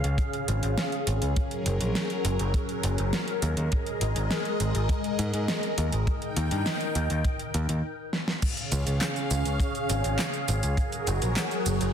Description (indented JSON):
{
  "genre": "synthwave",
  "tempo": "102 BPM",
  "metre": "4/4",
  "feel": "straight",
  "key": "Db major",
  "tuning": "A4 = 441 Hz",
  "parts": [
    { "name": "phased analog pad", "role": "sustained chords", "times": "0.0-11.9 s", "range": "Db3 to G5", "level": "-30 LUFS", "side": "equal", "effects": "phaser, chorus, sidechain pumping" },
    { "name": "picked electric bass", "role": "bass", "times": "0.0-11.9 s", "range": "Gb1 to Ab2", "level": "-27 LUFS", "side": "equal", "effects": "sidechain pumping" },
    { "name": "pop drum kit", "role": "drums", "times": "0.0-11.9 s", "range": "cabasa, crash cymbal, handclaps, hi-hat, snare drum", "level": "-31 LUFS", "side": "right 1 dB", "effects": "overdrive" },
    { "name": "kick drum", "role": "drums", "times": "0.2-10.9 s", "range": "none", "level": "-30 LUFS", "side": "equal", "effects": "none" }
  ],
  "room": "moderate digital room reverb, RT60 1.4 s, digital ambience",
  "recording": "dense, heavily limited modern master",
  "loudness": "-25 LUFS",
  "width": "side -8 dB against mid",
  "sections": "0.0-8.4 A section; 8.4-11.9 B section",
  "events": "stop 7.8-8.4; drum fill 8.1",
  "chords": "0.0 Db; 1.4 Gbadd9; 3.7 Absus2; 6.1 Eb; 8.4 Db; 10.8 Gbadd9"
}